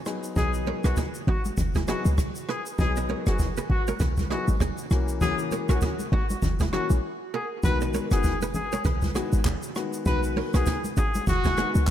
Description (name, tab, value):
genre	afrobeats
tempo	99 BPM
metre	4/4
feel	swing 58% on 16ths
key	unclear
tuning	A4 = 440 Hz
part	warm grand piano	accompaniment	0.1-11.8 s	D#3 to G#4	-32 LUFS	left 5 dB	none
part	jazz brush drum kit	drums	0.1-11.9 s	handclaps, hi-hat, kick drum, rim click, shaker	-29 LUFS	equal	none
part	warm trumpet	melody	0.4-11.7 s	F#4 to B4	-32 LUFS	left 1 dB	diffuse ambient delay
part	short 808-style bass	bass	0.4-11.9 s	F#1 to C#2	-25 LUFS	equal	none
part	congas	percussion	0.4-11.9 s	none	-35 LUFS	left 3 dB	none
part	kora	riff	0.7-11.7 s	D#4 to D#5	-34 LUFS	right 7 dB	diffuse ambient delay
room	light reverb, small room ambience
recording	none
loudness	-23 LUFS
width	side -11 dB against mid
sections	0.0-7.6 A section; 7.6-11.9 B section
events	break 7.0-7.6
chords	0.0 F#7